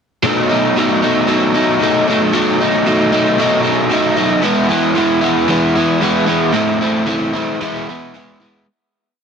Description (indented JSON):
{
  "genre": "rock",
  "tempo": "114 BPM",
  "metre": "4/4",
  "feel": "straight",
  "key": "unclear",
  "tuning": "A4 = 440 Hz",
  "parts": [
    { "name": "overdriven electric guitar", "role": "solo", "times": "0.2-8.7 s", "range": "A2 to E4", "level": "-12 LUFS", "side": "equal", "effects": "lush chorus" }
  ],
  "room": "light reverb",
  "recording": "dense, heavily limited modern master",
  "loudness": "-12 LUFS",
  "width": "side -6 dB against mid",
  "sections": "0.2-8.7 A section",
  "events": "fade-out 6.5-8.7",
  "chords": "0.2 B7; 4.4 E; 6.5 Am; 7.6 E",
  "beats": "| 0.23 0.76 1.28 1.80 | 2.33 2.85 3.38 3.90 | 4.43 4.96 5.49 6.01 | 6.54 7.08 7.61 8.14"
}